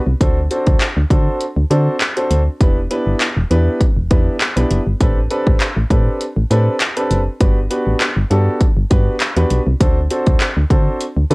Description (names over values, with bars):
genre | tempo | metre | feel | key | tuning
dance-pop | 100 BPM | 4/4 | straight | unclear | A4 = 441 Hz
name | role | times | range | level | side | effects
solid FM bass | bass | 0.1-11.3 s | E1 to D3 | -16 LUFS | equal | sidechain pumping
warm concert grand piano | accompaniment | 0.2-11.3 s | B3 to C5 | -20 LUFS | equal | sidechain pumping, cassette tape
house drum kit | drums | 0.2-11.3 s | handclaps, hi-hat, kick drum | -15 LUFS | equal | cassette tape
room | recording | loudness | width
little or no reverb | home recording on cassette | -13 LUFS | side -28 dB against mid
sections
0.0-11.3 A section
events
none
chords
0.2 D7; 2.6 Em7; 5.0 Am11; 7.4 Gmaj7; 9.8 D7